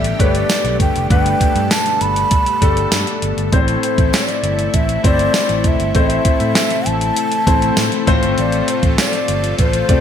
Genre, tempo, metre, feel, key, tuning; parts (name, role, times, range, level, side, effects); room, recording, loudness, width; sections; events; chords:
1980s-style pop; 99 BPM; 4/4; straight; A minor; A4 = 439 Hz
mellow hollow bansuri; melody; 0.0-10.0 s; C5 to B5; -20 LUFS; equal; ping-pong delay
warm concert grand piano; accompaniment; 0.0-10.0 s; G2 to B5; -19 LUFS; left 4 dB; analog chorus
lush unison pad; sustained chords; 0.0-10.0 s; B2 to A4; -25 LUFS; right 1 dB; chorus
fingered electric bass; bass; 0.0-10.0 s; F1 to A2; -21 LUFS; right 1 dB
clean 12-bit digital drum machine; drums; 0.0-10.0 s; hi-hat, kick drum, snare drum, tambourine; -17 LUFS; right 1 dB; gated reverb
tambourine; percussion; 0.5-9.1 s; -29 LUFS; right 9 dB
moderate plate reverb, RT60 1.6 s; bright 1980s-style digital production; -13 LUFS; side -8 dB against mid
0.0-10.0 A section
0.0 Gadd9; 3.5 Am; 8.1 F